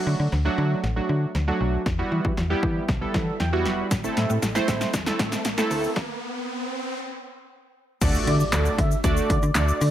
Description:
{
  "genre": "dance-pop",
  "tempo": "117 BPM",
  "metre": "4/4",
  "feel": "straight",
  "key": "unclear",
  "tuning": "A4 = 440 Hz",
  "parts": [
    { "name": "warm analog keys", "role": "accompaniment", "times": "0.0-9.9 s", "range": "F#3 to B5", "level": "-26 LUFS", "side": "right 2 dB", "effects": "chorus, sidechain pumping" },
    { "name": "riser and impact", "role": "sound effects", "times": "2.4-9.9 s", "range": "none", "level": "-34 LUFS", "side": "equal", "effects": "none" },
    { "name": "slap-like FM bass", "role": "bass", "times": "0.1-9.9 s", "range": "E1 to E3", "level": "-25 LUFS", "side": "equal", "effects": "sidechain pumping" },
    { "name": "punchy analog drum machine", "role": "drums", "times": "0.3-9.9 s", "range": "crash cymbal, handclaps, hi-hat, kick drum, snare drum", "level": "-26 LUFS", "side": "equal", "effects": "overdrive" },
    { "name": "tube shaker", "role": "percussion", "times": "3.9-9.9 s", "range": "none", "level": "-39 LUFS", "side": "left 11 dB", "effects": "none" },
    { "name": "filtered supersaw swell", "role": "melody", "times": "8.3-9.9 s", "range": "D5 to E5", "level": "-31 LUFS", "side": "right 1 dB", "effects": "dub echo" }
  ],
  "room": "digital ambience",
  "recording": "high-pass filter",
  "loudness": "-21 LUFS",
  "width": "side -12 dB against mid",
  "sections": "0.0-8.0 A section; 8.0-9.9 B section",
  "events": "build-up 0.0-8.0; drum fill 0.0-6.0; filter sweep 0.0-8.0; riser 2.4-8.0; synth keys fill 2.9-3.9; stop 6.0-8.0; drop 8.0-9.9; impact 8.0-9.9",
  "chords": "0.0 D; 1.9 Emadd9; 3.9 Am; 6.0 N.C.; 8.0 D",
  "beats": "0.32 0.84 1.35 | 1.86 2.38 2.89 3.40 | 3.91 4.43 4.94 5.45 | 5.96 6.48 6.99 7.50 | 8.02 8.53 9.04 9.55"
}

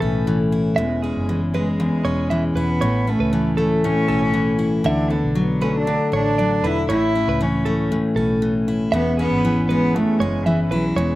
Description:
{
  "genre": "pop",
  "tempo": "118 BPM",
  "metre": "4/4",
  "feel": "swing 55% on 16ths",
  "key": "A major",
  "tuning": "A4 = 442 Hz",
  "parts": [
    { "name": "warm cello", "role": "melody", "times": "0.0-11.2 s", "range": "E3 to E4", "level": "-23 LUFS", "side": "right 1 dB", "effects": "slapback echo" },
    { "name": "picked steel-string acoustic guitar", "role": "accompaniment", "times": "0.0-11.2 s", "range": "E2 to E4", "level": "-20 LUFS", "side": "left 2 dB", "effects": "none" },
    { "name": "direct-recorded clean electric guitar", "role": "arpeggios", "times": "0.0-11.2 s", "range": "G#4 to E5", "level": "-26 LUFS", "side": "right 4 dB", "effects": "none" },
    { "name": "vintage muted fingered electric bass", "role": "bass", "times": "0.0-11.2 s", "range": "E1 to D2", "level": "-26 LUFS", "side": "equal", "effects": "none" }
  ],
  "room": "light reverb",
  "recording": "recorded outdoors, with no room sound",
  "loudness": "-17 LUFS",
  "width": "side -16 dB against mid",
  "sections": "0.0-11.2 A section",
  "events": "none",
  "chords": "0.0 A; 0.8 E6; 2.8 A; 4.9 Dadd9; 6.9 A; 8.9 E6",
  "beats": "0.26 | 0.77 1.28 1.79 2.30 | 2.81 3.32 3.83 4.34 | 4.85 5.36 5.87 6.38 | 6.89 7.40 7.91 8.42 | 8.93 9.44 9.95 10.46 | 10.97"
}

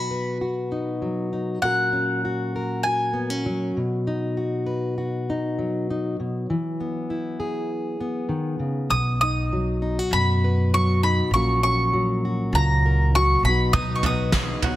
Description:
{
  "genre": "indie folk with a building arrangement",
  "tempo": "99 BPM",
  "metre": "4/4",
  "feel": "straight",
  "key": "B major",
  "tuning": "A4 = 439 Hz",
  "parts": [
    { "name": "mandolin", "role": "melody", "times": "0.0-3.7, 8.9-14.8 s", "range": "F#5 to D#6", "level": "-24 LUFS", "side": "equal", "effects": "none" },
    { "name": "fingerpicked plugged-in steel-string acoustic guitar", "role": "accompaniment", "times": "0.0-14.8 s", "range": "A#2 to B4", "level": "-25 LUFS", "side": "left 1 dB", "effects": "none" },
    { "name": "upright bass", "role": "bass", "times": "8.9-14.5 s", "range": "A#1 to F#2", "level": "-22 LUFS", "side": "equal", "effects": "none" },
    { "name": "picked acoustic archtop guitar", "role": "accompaniment", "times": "13.7-14.8 s", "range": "B2 to B4", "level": "-30 LUFS", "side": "left 4 dB", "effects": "none" },
    { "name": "warm brass ensemble", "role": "sustained chords", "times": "13.7-14.8 s", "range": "F#3 to D#4", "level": "-37 LUFS", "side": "right 1 dB", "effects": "none" },
    { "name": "bluegrass banjo", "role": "arpeggios", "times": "13.7-14.8 s", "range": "D#4 to G#4", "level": "-32 LUFS", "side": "right 5 dB", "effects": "none" },
    { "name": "soft brush drum kit", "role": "drums", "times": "13.7-14.8 s", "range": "kick drum, snare drum, toms", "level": "-23 LUFS", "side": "right 1 dB", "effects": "none" },
    { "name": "group handclap", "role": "percussion", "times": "14.3-14.5 s", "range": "none", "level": "-33 LUFS", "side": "left 1 dB", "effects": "none" }
  ],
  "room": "light reverb, small room ambience",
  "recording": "dense, heavily limited modern master",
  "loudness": "-21 LUFS",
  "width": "side -14 dB against mid",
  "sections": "0.0-8.9 A section; 8.9-14.8 B section",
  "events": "build-up 8.9-14.8; drum fill 13.7-14.8",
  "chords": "0.0 B; 1.6 F#/A#; 3.7 B; 6.5 E; 8.9 B; 11.3 F#/A#; 13.4 B",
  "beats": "0.40 1.01 | 1.61 2.22 2.83 3.44 | 4.05 4.66 5.27 5.88 | 6.48 7.09 7.70 8.30 | 8.91 9.52 10.12 10.73 | 11.33 11.93 12.54 13.14 | 13.74 14.35"
}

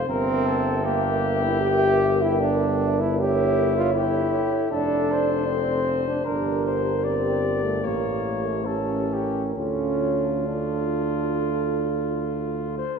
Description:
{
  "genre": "classical, hymn-like piece for brass band",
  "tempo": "64-79 BPM",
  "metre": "4/4",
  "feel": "rubato",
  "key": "D minor",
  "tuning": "A4 = 439 Hz",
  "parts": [
    { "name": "warm flugelhorn", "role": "melody", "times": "0.0-13.0 s", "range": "E4 to D5", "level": "-29 LUFS", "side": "left 6 dB", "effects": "none" },
    { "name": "mellow French horn section", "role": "second line", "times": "0.0-12.8 s", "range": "A4 to E5", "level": "-29 LUFS", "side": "right 6 dB", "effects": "none" },
    { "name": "mellow euphonium", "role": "accompaniment", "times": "0.0-12.8 s", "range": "F4 to Bb4", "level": "-31 LUFS", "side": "left 2 dB", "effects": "none" },
    { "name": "warm tuba", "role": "bass", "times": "0.0-12.8 s", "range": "F1 to D2", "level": "-28 LUFS", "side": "left 1 dB", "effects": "none" },
    { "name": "warm trombone", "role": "accompaniment", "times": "0.1-12.8 s", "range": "A3 to G4", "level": "-25 LUFS", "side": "right 1 dB", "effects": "none" }
  ],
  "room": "wet church reverb, RT60 2.9 s",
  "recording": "minimal, uncompressed stereo recording",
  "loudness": "-21 LUFS",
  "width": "side -6 dB against mid",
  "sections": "0.0-13.0 A section",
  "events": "none",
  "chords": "0.1 Edim/G; 3.2 A7/G; 4.7 Dm/F; 6.3 Gm; 7.8 A7b9; 9.6 Dm",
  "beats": "| 0.07 0.84 1.61 2.39 | 3.17 3.94 4.71 5.48 | 6.26 7.05 7.83 8.65 | 9.56 10.48 11.41 12.32"
}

